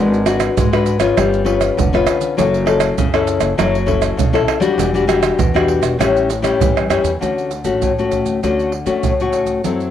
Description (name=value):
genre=samba and choro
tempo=99 BPM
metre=4/4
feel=straight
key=D major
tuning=A4 = 440 Hz
part: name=nylon-string guitar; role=accompaniment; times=0.0-9.9 s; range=A2 to B4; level=-16 LUFS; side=left 5 dB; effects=cassette tape
part: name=upright bass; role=bass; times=0.0-9.9 s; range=E1 to D3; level=-22 LUFS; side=right 2 dB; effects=none
part: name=maracas, pandeiro, tamborim and surdo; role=percussion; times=0.1-9.9 s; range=none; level=-20 LUFS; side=right 6 dB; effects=none
room=moderate spring reverb, RT60 1.5 s, studio reverb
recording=home recording on cassette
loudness=-14 LUFS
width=side -10 dB against mid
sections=0.0-7.2 A section; 7.2-9.9 B section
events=none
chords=0.0 G#m7b5; 1.2 G7#11; 2.4 F#m7; 4.8 Em9; 6.0 A7; 7.2 Dmaj7